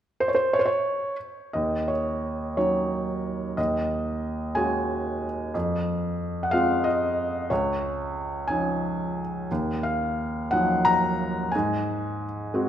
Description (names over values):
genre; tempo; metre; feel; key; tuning
classical, lyrical solo piano; 60 BPM (dotted quarters); 6/8; rubato; Eb dorian; A4 = 441 Hz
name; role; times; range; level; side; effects
felt-muted upright piano; solo; 0.2-12.7 s; Db2 to Bb5; -24 LUFS; equal; none
room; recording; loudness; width
moderate concert hall reverb, RT60 2.0 s; minimal, uncompressed stereo recording; -24 LUFS; side -10 dB against mid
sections
0.0-1.6 A section; 1.6-12.7 B section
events
felt piano fill 12.5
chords
0.0 N.C.; 1.6 Ebm7; 3.6 Ab7sus4/Eb; 5.5 Fm; 7.5 Dbadd9; 9.5 Ebmadd9; 11.5 Ab7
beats
0.55 | 1.55 2.57 | 3.58 4.57 | 5.55 6.53 | 7.50 8.49 | 9.50 10.52 | 11.53 12.54